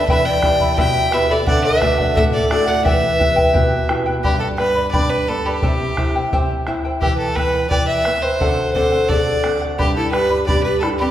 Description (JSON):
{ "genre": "andean folk, Andean ensemble", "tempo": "87 BPM", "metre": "2/4", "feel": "straight", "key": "E minor", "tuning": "A4 = 440 Hz", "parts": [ { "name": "bright fiddle", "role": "melody", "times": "0.0-11.1 s", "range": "G4 to G5", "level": "-20 LUFS", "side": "equal", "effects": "none" }, { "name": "breathy large pan pipes", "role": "second line", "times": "0.0-3.9, 8.8-11.1 s", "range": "C4 to E5", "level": "-20 LUFS", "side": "equal", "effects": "none" }, { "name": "charango", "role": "accompaniment", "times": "0.0-11.1 s", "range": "E4 to B5", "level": "-23 LUFS", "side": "equal", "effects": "none" }, { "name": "nylon-string guitar", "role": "accompaniment", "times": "0.0-11.1 s", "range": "E2 to A4", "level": "-24 LUFS", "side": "left 1 dB", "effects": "none" }, { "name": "bombo", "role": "percussion", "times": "0.1-11.0 s", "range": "none", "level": "-21 LUFS", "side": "equal", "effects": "none" } ], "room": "wet recital hall reverb, RT60 1.7 s", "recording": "heard from further back in the room", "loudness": "-15 LUFS", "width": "side -12 dB against mid", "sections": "0.0-4.2 A section; 4.2-11.1 B section", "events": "none", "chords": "0.1 Em; 1.5 D; 2.9 Em; 4.2 G; 5.6 C; 7.0 Em; 8.4 D7; 9.8 G" }